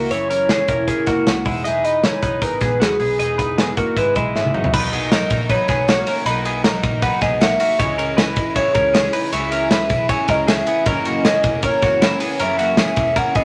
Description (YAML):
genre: jangly indie pop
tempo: 156 BPM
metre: 4/4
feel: straight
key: B major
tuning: A4 = 439 Hz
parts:
  - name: hollow clarinet-like synth lead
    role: melody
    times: 0.0-13.4 s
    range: G#4 to G#5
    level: -22 LUFS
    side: equal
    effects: chorus, phaser
  - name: picked twelve-string acoustic guitar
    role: accompaniment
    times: 0.0-13.4 s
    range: F#2 to E4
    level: -29 LUFS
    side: equal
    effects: none
  - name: twelve-string electric guitar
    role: arpeggios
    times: 0.0-13.4 s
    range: F#3 to D#5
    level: -26 LUFS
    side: equal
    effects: none
  - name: vintage muted picked electric bass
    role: bass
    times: 0.0-13.4 s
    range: E1 to D#2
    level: -31 LUFS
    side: equal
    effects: none
  - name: modern studio drum kit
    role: drums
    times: 0.1-13.4 s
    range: crash cymbal, hi-hat, kick drum, ride cymbal, snare drum, toms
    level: -22 LUFS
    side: equal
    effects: none
  - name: tambourine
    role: percussion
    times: 4.7-13.4 s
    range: none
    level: -46 LUFS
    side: equal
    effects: none
room: light reverb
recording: none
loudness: -18 LUFS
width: mono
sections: 0.0-4.7 A section; 4.7-13.4 B section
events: drum fill 4.3-4.7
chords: 0.0 F#7; 1.5 Emaj7; 4.7 Bmaj7; 7.8 C#m; 10.9 F#7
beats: | 0.11 0.49 0.88 1.26 | 1.65 2.04 2.42 2.81 | 3.19 3.58 3.96 4.35 | 4.73 5.12 5.50 5.88 | 6.27 6.65 7.03 7.42 | 7.80 8.18 8.57 8.95 | 9.33 9.72 10.10 10.48 | 10.87 11.25 11.63 12.02 | 12.40 12.78 13.16